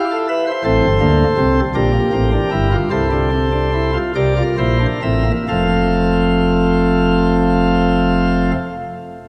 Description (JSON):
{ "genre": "classical, baroque-style 4-part fugue for pipe organ", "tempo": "43-56 BPM (dotted quarters)", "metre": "6/8", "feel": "straight", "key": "F major", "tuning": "A4 = 442 Hz", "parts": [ { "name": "pipe organ, sparkling flutes", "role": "solo", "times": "0.0-8.5 s", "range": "F1 to F5", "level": "-16 LUFS", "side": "equal", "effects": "none" } ], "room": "wet church reverb, RT60 2.7 s", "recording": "none", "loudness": "-16 LUFS", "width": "mono", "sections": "0.0-5.5 A section; 5.5-9.3 B section", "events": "slowing down 0.0-5.5", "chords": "0.0 C/E; 0.7 Am; 1.8 Gm; 2.9 F/C; 4.2 C7; 5.5 F" }